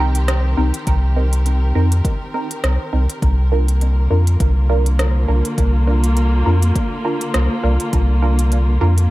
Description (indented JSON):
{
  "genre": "ambient dub",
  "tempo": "102 BPM",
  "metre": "4/4",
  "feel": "swing 56% on 16ths",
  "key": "unclear",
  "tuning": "A4 = 440 Hz",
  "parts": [
    { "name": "dark chamber string section", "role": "sustained chords", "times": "0.0-9.1 s", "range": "D3 to Bb4", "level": "-24 LUFS", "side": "equal", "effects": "none" },
    { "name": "filtered dub chord stab", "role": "stabs", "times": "0.0-8.9 s", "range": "C4 to Bb4", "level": "-24 LUFS", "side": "right 2 dB", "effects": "phaser, dub echo" },
    { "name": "soft dub sub bass", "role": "bass", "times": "0.0-9.1 s", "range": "C2 to F2", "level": "-14 LUFS", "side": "equal", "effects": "none" },
    { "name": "organic electronic drum kit", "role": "drums", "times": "0.1-9.1 s", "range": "hi-hat, rim click", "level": "-25 LUFS", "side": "equal", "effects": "none" },
    { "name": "electronic kick drum", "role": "drums", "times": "0.9-8.1 s", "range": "none", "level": "-20 LUFS", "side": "equal", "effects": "overdrive" }
  ],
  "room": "little or no reverb",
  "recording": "none",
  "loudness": "-14 LUFS",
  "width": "side -18 dB against mid",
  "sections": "0.0-9.1 A section",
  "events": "none",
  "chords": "0.0 Cm7; 3.2 Bb/C"
}